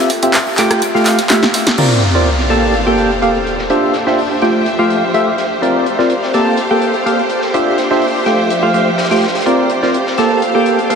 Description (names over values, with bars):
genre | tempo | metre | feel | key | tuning
piano house | 125 BPM | 4/4 | straight | F major | A4 = 439 Hz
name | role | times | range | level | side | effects
percussive organ stab | riff | 0.0-11.0 s | A3 to A5 | -13 LUFS | equal | wide subtle chorus, diffuse ambient delay
big rock drum kit | drums | 0.1-11.0 s | hi-hat, snare drum | -27 LUFS | left 2 dB | high-pass filter on hats, low-pass filter on hats, high-pass filter on snare, low-pass filter on snare, high-pass filter on room, low-pass filter on room
punchy analog drum machine | drums | 0.1-1.9 s | crash cymbal, handclaps, hi-hat, rim click, snare drum | -18 LUFS | equal | overdrive
sub drop | sound effects | 1.8-3.7 s | none | -18 LUFS | equal | none
rich studio string section | texture | 1.8-11.0 s | F3 to F5 | -19 LUFS | right 1 dB | none
room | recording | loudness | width
wet huge ambient reverb, RT60 7.5 s | dreamy mix soaked in reverb | -11 LUFS | side -6 dB against mid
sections
0.0-1.8 A section; 1.8-11.0 B section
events
drum fill 1.3-1.8; band accent 1.7; impact 1.8-3.7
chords
0.0 Cadd11; 0.6 Fmaj9; 1.8 C9sus4; 2.5 Gm9; 3.7 Dm11; 4.4 Fmaj9; 5.6 C9sus4; 6.3 Gm9; 7.5 Dm11; 8.3 Fmaj9; 9.5 C9sus4; 10.2 Gm9